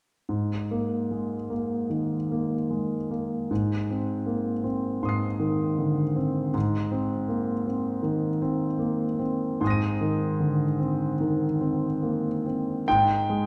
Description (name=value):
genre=classical, impressionist solo piano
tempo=67-81 BPM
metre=4/4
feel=rubato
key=Ab lydian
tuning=A4 = 440 Hz
part: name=clear concert grand piano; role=solo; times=0.3-13.5 s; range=Ab2 to Eb7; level=-27 LUFS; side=equal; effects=none
room=wet recital hall reverb, RT60 1.4 s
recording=heard from further back in the room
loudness=-27 LUFS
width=mono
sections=0.3-12.9 A section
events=none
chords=0.3 Absus2; 3.5 Abadd9; 12.9 Ab5